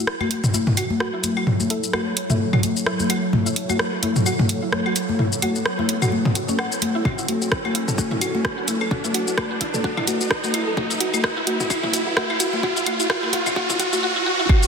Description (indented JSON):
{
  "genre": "minimal techno",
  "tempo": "129 BPM",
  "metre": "4/4",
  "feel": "swing 57% on 16ths",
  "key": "F# minor",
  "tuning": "A4 = 441 Hz",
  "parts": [
    { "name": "thumb-piano-like synth pluck", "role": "melody", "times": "0.0-2.4, 7.3-14.0 s", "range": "F#4 to A4", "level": "-29 LUFS", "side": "equal", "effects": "chorus, dub echo" },
    { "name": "mallet-like synth pluck", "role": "riff", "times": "0.0-14.6 s", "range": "C#4 to F#5", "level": "-29 LUFS", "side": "right 1 dB", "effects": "ensemble chorus, sidechain pumping, digital delay" },
    { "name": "riser", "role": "sound effects", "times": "2.2-14.5 s", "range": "none", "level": "-27 LUFS", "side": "right 1 dB", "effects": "none" },
    { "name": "ethereal airy pad", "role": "texture", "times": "0.8-14.1 s", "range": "F#3 to C#5", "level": "-29 LUFS", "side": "right 2 dB", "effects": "ensemble chorus, built-in reverb, sidechain pumping" },
    { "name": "house drum kit", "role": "drums", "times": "0.1-14.7 s", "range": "hi-hat, rim click, shaker", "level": "-25 LUFS", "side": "equal", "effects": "soft clipping on snare" },
    { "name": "electronic congas, claves and toms", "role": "percussion", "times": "0.2-14.6 s", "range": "none", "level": "-23 LUFS", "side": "left 2 dB", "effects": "overdrive" },
    { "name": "electronic kick drum", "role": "drums", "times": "7.1-14.6 s", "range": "none", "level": "-21 LUFS", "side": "equal", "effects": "none" },
    { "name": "pulsing gated texture", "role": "texture", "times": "14.7 s", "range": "B4", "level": "-44 LUFS", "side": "left 1 dB", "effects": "none" }
  ],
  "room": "moderate lush hall reverb, RT60 2.0 s",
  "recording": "dense, heavily limited modern master, high-pass filter",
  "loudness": "-19 LUFS",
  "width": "side -6 dB against mid",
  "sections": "0.0-14.5 A section",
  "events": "build-up 0.0-14.5; filter sweep on synth arpeggio sound 0.0-14.5; filter sweep on synth pluck 0.0-14.5; filter sweep 0.0-14.5; riser 2.2-14.5",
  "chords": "0.0 F#m7",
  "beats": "0.07 0.54 1.00 | 1.47 1.94 2.40 2.87 | 3.33 3.80 4.26 4.73 | 5.19 5.66 6.12 6.59 | 7.05 7.52 7.98 8.45 | 8.91 9.38 9.84 10.31 | 10.77 11.24 11.70 12.17 | 12.63 13.10 13.56 14.03 | 14.49"
}